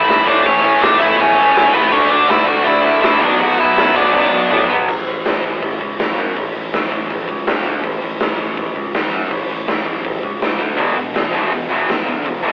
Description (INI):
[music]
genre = punk rock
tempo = 163 BPM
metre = 4/4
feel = straight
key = A major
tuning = A4 = 440 Hz
[part]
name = nasal lead guitar with a parked wah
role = melody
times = 0.0-4.8 s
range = B3 to F#5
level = -13 LUFS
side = equal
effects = overdrive
[part]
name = overdriven semi-hollow guitar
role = riff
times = 0.0-4.9, 10.8-12.5 s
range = E2 to D4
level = -21 LUFS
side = equal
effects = none
[part]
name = tight distorted guitar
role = riff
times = 0.0-4.9, 10.8-12.5 s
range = E2 to D4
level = -17 LUFS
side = equal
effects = distortion
[part]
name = modern bright picked electric bass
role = bass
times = 0.0-12.5 s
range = E1 to A2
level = -23 LUFS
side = equal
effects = none
[part]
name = raw garage drum kit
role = drums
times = 0.1-12.5 s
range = crash cymbal, hi-hat, kick drum, snare drum, toms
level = -19 LUFS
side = equal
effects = none
[part]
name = fuzz guitar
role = riff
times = 1.9-4.7 s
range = B2 to D4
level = -21 LUFS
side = equal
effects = distortion
[sound]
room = light reverb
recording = rough rehearsal-room recording, warm saturation, telephone sound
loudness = -13 LUFS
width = side -33 dB against mid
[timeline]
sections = 0.0-4.9 A section; 4.9-12.5 B section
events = drum fill 4.1-4.9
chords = 0.0 A; 1.9 D; 3.2 Bm; 4.9 A; 7.5 N.C.; 7.8 A; 10.6 N.C.; 10.8 E5